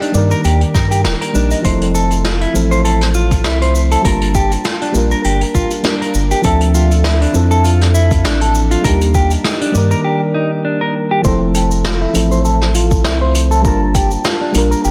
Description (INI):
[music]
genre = sunset chillout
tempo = 100 BPM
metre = 4/4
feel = swing 55% on 16ths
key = F major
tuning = A4 = 441 Hz
[part]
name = mellow FM electric piano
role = accompaniment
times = 0.0-14.9 s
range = Eb3 to A5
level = -20 LUFS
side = equal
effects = chorus, cassette tape, tape echo
[part]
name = mellow electric guitar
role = arpeggios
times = 0.0-14.9 s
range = D4 to Eb5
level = -21 LUFS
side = equal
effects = spring reverb, low-pass filter, tape echo
[part]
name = vintage brush drum kit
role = drums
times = 0.0-14.9 s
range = cabasa, hi-hat, snare drum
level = -24 LUFS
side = equal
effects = none
[part]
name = round analog bass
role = bass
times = 0.1-14.9 s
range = Eb1 to G2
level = -17 LUFS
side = equal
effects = none
[part]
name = electronic kick drum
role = drums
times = 0.7-14.1 s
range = none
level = -19 LUFS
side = equal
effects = none
[sound]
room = moderate plate reverb, RT60 2.1 s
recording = dense, heavily limited modern master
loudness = -14 LUFS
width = mono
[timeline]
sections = 0.0-11.2 A section; 11.2-14.9 A section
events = filter sweep on clean electric guitar 11.2-14.9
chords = 0.0 Ebmaj7; 1.6 Fmaj7; 4.0 Gm7; 6.4 Dm9; 8.8 Ebmaj7; 11.2 Fmaj7; 13.6 Gm7